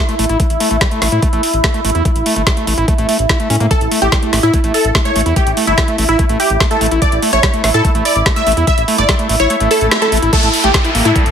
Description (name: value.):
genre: psychedelic trance.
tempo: 145 BPM.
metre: 4/4.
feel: straight.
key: A major.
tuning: A4 = 439 Hz.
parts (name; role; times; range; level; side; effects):
evolving wavetable pad; sustained chords; 0.0-11.3 s; E4 to A4; -20 LUFS; right 2 dB; phaser, built-in reverb, sidechain pumping.
screaming distorted acid line; riff; 0.0-11.2 s; G3 to E4; -20 LUFS; moving between left 6 dB and right 4 dB; distortion, chorus, auto-pan, sidechain pumping, tape echo.
garage drum kit; drums; 0.1-11.3 s; crash cymbal, hi-hat, snare drum; -18 LUFS; right 1 dB; overdrive.
round analog bass; bass; 0.2-11.3 s; G1 to A2; -17 LUFS; equal; none.
electronic kick drum; drums; 0.4-11.2 s; none; -15 LUFS; equal; overdrive.
supersaw stab; melody; 3.7-11.2 s; E4 to E5; -16 LUFS; equal; phaser, sidechain pumping, dub echo.
swell and downlifter; sound effects; 9.6-11.3 s; none; -19 LUFS; equal; none.
room: moderate digital room reverb, RT60 0.9 s.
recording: heavily compressed radio sound.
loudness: -11 LUFS.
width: side -8 dB against mid.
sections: 0.0-10.3 A section.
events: kick drops out 9.5-10.3; swell 9.6-10.3; band accent 9.9.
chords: 0.0 A5.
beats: | 0.40 0.81 1.23 1.64 | 2.05 2.47 2.88 3.29 | 3.71 4.12 4.54 4.95 | 5.36 5.78 6.19 6.61 | 7.02 7.43 7.85 8.26 | 8.67 9.09 9.50 9.91 | 10.33 10.74 11.16.